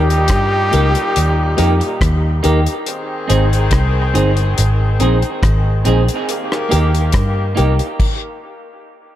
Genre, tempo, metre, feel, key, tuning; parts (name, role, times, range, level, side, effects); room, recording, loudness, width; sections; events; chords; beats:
dub reggae; 70 BPM; 4/4; straight; A4 = 440 Hz
clear flugelhorn; melody; 0.0-2.4 s; G4; -19 LUFS; equal; dub echo
warm horn section; second line; 0.0-7.5 s; Bb2 to Ab4; -24 LUFS; left 2 dB; dub echo
semi-hollow electric guitar; accompaniment; 0.0-7.7 s; Bb3 to Ab4; -22 LUFS; right 6 dB; spring reverb, dub echo
dark grand piano; stabs; 0.0-7.9 s; Eb4 to C5; -24 LUFS; left 5 dB; dub echo
vintage muted fingered electric bass; bass; 0.0-7.8 s; G1 to G2; -14 LUFS; equal
deep reggae drum kit; drums; 0.1-8.2 s; crash cymbal, hi-hat, kick drum, rim click; -19 LUFS; equal
light reverb, small room ambience; echo-heavy mix; -13 LUFS; side -12 dB against mid
0.0-9.2 A section
stop 8.0-9.2
0.0 Eb; 2.9 Ab; 6.3 Eb
0.29 1.15 2.00 | 2.86 3.72 4.57 5.43 | 6.29 7.14 8.00